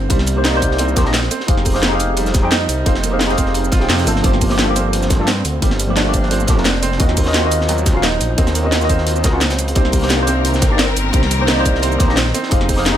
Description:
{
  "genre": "liquid drum and bass",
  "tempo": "174 BPM",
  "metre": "4/4",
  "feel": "straight",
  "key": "C minor",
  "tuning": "A4 = 442 Hz",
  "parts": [
    { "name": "felt-muted upright piano", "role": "arpeggios", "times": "0.0-13.0 s", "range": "C3 to C5", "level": "-22 LUFS", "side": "right 4 dB", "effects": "dub echo" },
    { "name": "swelling detuned saw bass", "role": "bass", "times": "0.0-13.0 s", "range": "Eb1 to G2", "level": "-19 LUFS", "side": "equal", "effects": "none" },
    { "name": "tine electric piano", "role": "accompaniment", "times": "0.1-13.0 s", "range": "F3 to G5", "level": "-20 LUFS", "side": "left 1 dB", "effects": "phaser, digital delay" },
    { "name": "crunchy breakbeat drum kit", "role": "drums", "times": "0.1-12.9 s", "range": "hi-hat, snare drum", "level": "-26 LUFS", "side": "equal", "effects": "high-pass filter on hats, high-pass filter on snare, high-pass filter on room" },
    { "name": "electronic kick drum", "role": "drums", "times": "0.1-12.8 s", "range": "none", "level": "-16 LUFS", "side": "equal", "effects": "none" },
    { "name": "garage drum kit", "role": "drums", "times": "0.1-12.9 s", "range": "hi-hat, shaker, snare drum", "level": "-20 LUFS", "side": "equal", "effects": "none" },
    { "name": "rich studio string section", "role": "sustained chords", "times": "9.8-13.0 s", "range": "Eb3 to Bb4", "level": "-23 LUFS", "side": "left 3 dB", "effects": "none" }
  ],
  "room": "light reverb, studio ambience",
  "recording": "none",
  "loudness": "-13 LUFS",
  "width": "side -10 dB against mid",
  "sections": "0.0-13.0 A section",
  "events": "none",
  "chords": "0.0 Cm7; 1.3 Fm7; 4.1 Gm7; 7.0 Ebm7; 9.8 Cm7; 12.3 Fm7",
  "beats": "| 0.10 0.45 0.79 1.14 | 1.48 1.83 2.17 2.52 | 2.86 3.21 3.55 3.90 | 4.24 4.59 4.93 5.28 | 5.62 5.96 6.31 6.66 | 7.00 7.34 7.69 8.03 | 8.38 8.72 9.07 9.41 | 9.76 10.10 10.45 10.79 | 11.14 11.48 11.83 12.17 | 12.52 12.86"
}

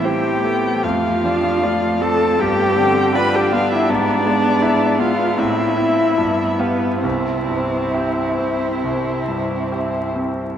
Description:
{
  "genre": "classical, slow romantic movement for piano quartet",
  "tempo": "65-84 BPM",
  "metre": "4/4",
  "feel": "rubato",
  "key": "C major",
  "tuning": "A4 = 440 Hz",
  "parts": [
    { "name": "muted violin", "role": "melody", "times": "0.0-10.1 s", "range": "B4 to B5", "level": "-25 LUFS", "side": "left 4 dB", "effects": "none" },
    { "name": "muted cello", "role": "second line", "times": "0.0-10.2 s", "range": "A3 to E4", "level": "-23 LUFS", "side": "right 2 dB", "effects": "none" },
    { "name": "bright grand piano", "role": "accompaniment", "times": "0.0-10.6 s", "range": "C2 to F5", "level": "-21 LUFS", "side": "left 1 dB", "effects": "none" },
    { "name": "muted viola", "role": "accompaniment", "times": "0.0-10.1 s", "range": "B3 to B4", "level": "-20 LUFS", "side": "equal", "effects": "none" }
  ],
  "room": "wet cathedral reverb, RT60 6.2 s",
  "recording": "in a vast, echoing space, vinyl crackle",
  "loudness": "-16 LUFS",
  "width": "side -9 dB against mid",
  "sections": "0.0-10.6 A section",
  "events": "none",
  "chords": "0.0 Am; 0.8 Dm/F; 2.4 G7; 3.9 E7/G#; 5.4 Am; 6.2 G7; 7.0 C",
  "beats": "0.04 | 0.83 1.63 2.40 3.16 | 3.89 4.62 5.38 6.18 | 7.04 7.94 8.84 9.72"
}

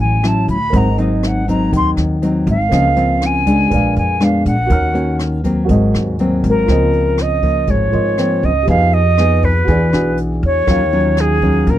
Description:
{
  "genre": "bossa nova",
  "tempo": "121 BPM",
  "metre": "4/4",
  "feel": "straight",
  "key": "Db major",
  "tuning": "A4 = 440 Hz",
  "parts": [
    { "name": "silver concert flute", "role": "melody", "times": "0.0-11.8 s", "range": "Ab4 to C6", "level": "-17 LUFS", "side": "right 1 dB", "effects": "none" },
    { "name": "dark grand piano", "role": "accompaniment", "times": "0.0-11.8 s", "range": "F4 to F6", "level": "-26 LUFS", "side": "right 6 dB", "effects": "none" },
    { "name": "nylon-string guitar", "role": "accompaniment", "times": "0.0-11.8 s", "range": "Ab2 to Ab4", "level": "-17 LUFS", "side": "left 1 dB", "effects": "none" },
    { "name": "upright bass", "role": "bass", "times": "0.0-11.8 s", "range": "Ab1 to F2", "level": "-17 LUFS", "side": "equal", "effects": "none" },
    { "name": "jazz brush drum kit", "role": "drums", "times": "0.2-11.8 s", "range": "hi-hat, kick drum, rim click", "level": "-22 LUFS", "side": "equal", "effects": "none" }
  ],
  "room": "little or no reverb",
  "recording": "dry, close 1970s-style studio recording",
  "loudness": "-12 LUFS",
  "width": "side -12 dB against mid",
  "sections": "0.0-6.7 A section; 6.7-11.8 B section",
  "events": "flute solo 0.0-6.7",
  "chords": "0.0 Dmaj9; 0.7 Ab7; 2.7 Dbmaj13; 3.7 Bb7b9; 4.7 Ebm7; 5.7 Ab9; 6.7 Dbmaj13; 8.7 Fm7b5; 9.7 E9; 10.7 Ebm9",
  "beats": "0.23 | 0.73 1.23 1.72 2.22 | 2.71 3.21 3.71 4.21 | 4.70 5.20 5.70 6.19 | 6.69 7.19 7.69 8.18 | 8.68 9.18 9.68 10.18 | 10.67 11.17 11.67"
}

